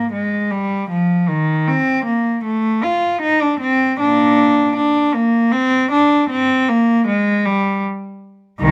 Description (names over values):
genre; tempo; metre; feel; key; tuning
classical, baroque-style suite movement for unaccompanied cello; 78 BPM; 4/4; rubato; unclear; A4 = 440 Hz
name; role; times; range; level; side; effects
rich cello; solo; 0.0-8.7 s; C2 to F4; -17 LUFS; equal; none
room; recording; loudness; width
light reverb; none; -17 LUFS; mono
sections
0.0-8.7 A section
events
none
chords
none